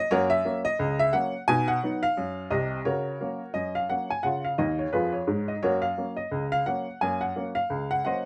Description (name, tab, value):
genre	ragtime piano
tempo	87 BPM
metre	2/4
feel	swing 58% on 16ths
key	F# major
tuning	A4 = 440 Hz
part	clear upright piano	solo	0.0-8.3 s	B#1 to G#5	-27 LUFS	equal	none
room	light reverb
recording	close, detailed microphones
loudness	-27 LUFS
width	mono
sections	0.0-8.3 A section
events	upright piano fill 4.6-5.6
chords	0.0 F#; 1.5 B; 2.9 F#/C#; 4.2 C#; 5.6 F#